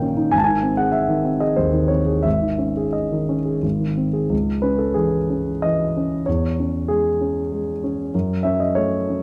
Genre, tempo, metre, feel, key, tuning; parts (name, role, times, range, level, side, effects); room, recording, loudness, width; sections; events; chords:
classical, romantic character piece for solo piano; 85-101 BPM; 3/4; rubato; C# minor; A4 = 439 Hz
dark grand piano; solo; 0.0-9.2 s; G#1 to A5; -21 LUFS; equal
moderate recital hall reverb, RT60 1.5 s; close, detailed microphones; -21 LUFS; mono
0.0-4.3 A section; 4.3-9.2 B section
0.3 G#; 2.2 G#sus4; 3.6 G#; 4.3 C#m; 6.3 C#m/E; 8.1 F#m